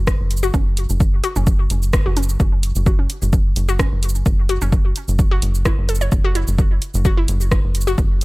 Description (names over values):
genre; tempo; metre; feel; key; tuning
minimal techno; 129 BPM; 4/4; swing 54% on 16ths; unclear; A4 = 440 Hz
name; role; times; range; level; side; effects
rubbery square bass; bass; 0.0-8.2 s; F#1; -19 LUFS; equal; tube saturation, sidechain pumping
electronic kick drum; drums; 0.1-8.1 s; none; -17 LUFS; equal; overdrive
punchy analog drum machine; drums; 0.1-8.2 s; cabasa, hi-hat, rim click; -25 LUFS; equal; overdrive, tape echo
hollow square pluck; riff; 0.4-7.9 s; C#4 to C#5; -26 LUFS; left 2 dB; chorus, sidechain pumping, dub echo
room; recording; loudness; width
little or no reverb; echo-heavy mix; -15 LUFS; side -22 dB against mid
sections
0.0-8.2 A section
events
none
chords
none